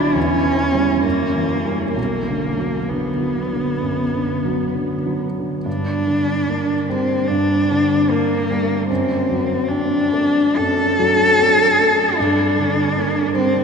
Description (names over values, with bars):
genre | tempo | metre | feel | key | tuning
classical, romantic duo for cello and grand piano | 64-78 BPM | 4/4 | rubato | B minor, G minor from 5.7 s | A4 = 440 Hz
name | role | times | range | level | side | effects
rich cello | melody | 0.0-13.6 s | Bb3 to A4 | -17 LUFS | left 1 dB | none
warm grand piano | accompaniment | 0.0-13.6 s | B1 to D4 | -21 LUFS | right 2 dB | none
room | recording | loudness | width
wet cathedral reverb, RT60 6.5 s | none | -16 LUFS | side -6 dB against mid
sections
0.0-5.7 A section; 5.7-13.6 B section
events
none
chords
0.2 C#dim/E; 1.0 F#7b9; 2.0 Bm; 5.7 Gm; 8.9 D7/F#; 12.2 Gm